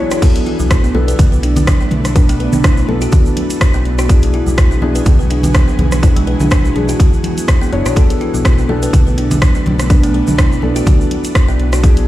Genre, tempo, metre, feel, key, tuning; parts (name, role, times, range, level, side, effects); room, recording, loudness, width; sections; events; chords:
afro house; 124 BPM; 4/4; swing 55% on 16ths; B dorian; A4 = 440 Hz
ethereal airy pad; sustained chords; 0.0-12.1 s; E3 to G#4; -24 LUFS; right 2 dB; ensemble chorus, built-in reverb, sidechain pumping
felt-muted upright piano; stabs; 0.0-12.1 s; B3 to C#5; -22 LUFS; left 3 dB; sidechain pumping, digital delay
kalimba; arpeggios; 0.1-11.9 s; F#3 to B4; -20 LUFS; right 1 dB; sidechain pumping, digital delay
house drum kit; drums; 0.1-12.1 s; crash cymbal, hi-hat, rim click; -22 LUFS; right 1 dB
egg shaker; percussion; 0.1-12.1 s; -31 LUFS; right 3 dB
electronic kick drum; drums; 0.2-11.9 s; -10 LUFS; equal
congas; percussion; 0.2-11.9 s; -21 LUFS; left 1 dB
smooth gliding synth bass; bass; 0.6-12.1 s; F#1 to B1; -16 LUFS; equal; tube saturation, sidechain pumping
light reverb; played on a big sound system in a bare room, stone room reverb; -10 LUFS; side -15 dB against mid
0.0-12.1 A section
0.2 Bm7; 4.1 E7/B; 8.0 Bm7